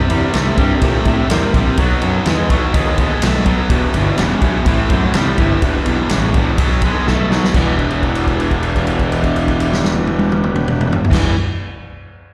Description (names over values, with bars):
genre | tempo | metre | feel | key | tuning
blues rock power trio and southern rock | 125 BPM | 4/4 | straight | E minor | A4 = 440 Hz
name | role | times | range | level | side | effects
overdriven tonewheel organ | sustained chords | 0.0-11.3 s | C4 to B5 | -27 LUFS | equal | slow rotary speaker, chorus vibrato
distorted electric guitar | riff | 0.0-11.3 s | E2 to Bb3 | -20 LUFS | equal | overdrive, slapback echo
fuzz fingered electric bass | bass | 0.1-11.3 s | E1 to Bb2 | -21 LUFS | equal | overdrive
vintage drum kit | drums | 0.1-11.2 s | crash cymbal, kick drum, ride cymbal, snare drum, toms | -20 LUFS | equal | none
room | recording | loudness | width
small room ambience | live gig heard through the venue's PA, recital hall reverb | -15 LUFS | mono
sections
0.0-7.5 A section; 7.5-11.4 B section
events
tonewheel organ fill 6.6-7.5; drum fill 7.1-7.5; held note 7.5-11.1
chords
0.0 C7; 1.8 B7; 3.7 Em7; 4.7 Am7; 5.6 Em7; 6.6 B7; 7.5 Em7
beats
0.34 0.82 1.30 | 1.78 2.27 2.75 3.23 | 3.71 4.19 4.67 5.15 | 5.63 6.11 6.59 7.07 | 7.55 8.03 8.51 8.99 | 9.47 9.95 10.43 10.91